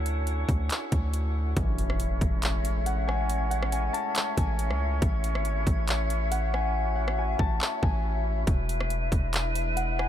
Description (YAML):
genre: hip hop, atmospheric cloud-rap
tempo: 139 BPM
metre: 4/4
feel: half-time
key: A major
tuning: A4 = 441 Hz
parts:
  - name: small flute group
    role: sustained chords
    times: 0.0-10.1 s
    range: C#4 to F#5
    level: -33 LUFS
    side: left 1 dB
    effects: sidechain pumping
  - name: long sustained 808-style bass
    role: bass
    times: 0.0-10.1 s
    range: E1 to D2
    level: -28 LUFS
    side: equal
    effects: none
  - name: drifting glass-harmonics texture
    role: texture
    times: 0.0-10.1 s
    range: G#3 to C#5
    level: -40 LUFS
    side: right 2 dB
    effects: chorus, built-in reverb
  - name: trap drum kit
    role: drums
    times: 0.1-10.1 s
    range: handclaps, hi-hat, kick drum, rim click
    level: -29 LUFS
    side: equal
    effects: none
  - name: impact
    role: sound effects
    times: 1.6-3.3 s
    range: none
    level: -37 LUFS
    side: equal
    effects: none
  - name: Celtic harp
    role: melody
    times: 2.9-10.1 s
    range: F#5 to A5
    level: -34 LUFS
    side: left 3 dB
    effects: tape echo
room: little or no reverb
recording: none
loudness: -25 LUFS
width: side -10 dB against mid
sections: 0.0-1.6 A section; 1.6-10.1 B section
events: impact 1.6-3.3; hi-hats muted 6.7-8.5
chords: 0.0 Dmaj7; 1.6 Amaj7; 8.5 E7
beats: 0.27 0.70 1.14 | 1.57 2.00 2.43 2.86 | 3.29 3.73 4.16 4.59 | 5.02 5.45 5.88 6.32 | 6.75 7.18 7.61 8.04 | 8.47 8.90 9.34 9.77